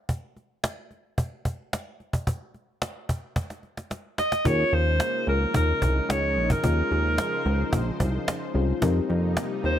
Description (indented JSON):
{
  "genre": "early-eighties boogie funk",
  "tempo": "110 BPM",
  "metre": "4/4",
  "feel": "straight",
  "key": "Eb mixolydian",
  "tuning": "A4 = 440 Hz",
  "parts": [
    { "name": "cajon", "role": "drums", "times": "0.1-9.7 s", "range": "none", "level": "-27 LUFS", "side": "equal", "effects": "none" },
    { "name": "breathy alto saxophone", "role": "melody", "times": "4.2-9.8 s", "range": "Bb4 to Eb5", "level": "-26 LUFS", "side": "right 1 dB", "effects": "none" },
    { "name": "mellow FM electric piano", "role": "accompaniment", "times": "4.4-9.8 s", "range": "C4 to C5", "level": "-31 LUFS", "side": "left 6 dB", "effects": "chorus" },
    { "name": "lush unison pad", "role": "sustained chords", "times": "4.5-9.8 s", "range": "C3 to C5", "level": "-33 LUFS", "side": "equal", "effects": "chorus" },
    { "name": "chorused synth bass", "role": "bass", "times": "4.5-9.8 s", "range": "Bb1 to F2", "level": "-24 LUFS", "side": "equal", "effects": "none" }
  ],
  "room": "small room ambience",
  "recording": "none",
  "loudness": "-23 LUFS",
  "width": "side -10 dB against mid",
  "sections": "0.0-4.5 A section; 4.5-9.8 B section",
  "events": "drum fill 3.4-4.5",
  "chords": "0.0 N.C.; 4.5 Eb9sus4; 8.8 F9sus4"
}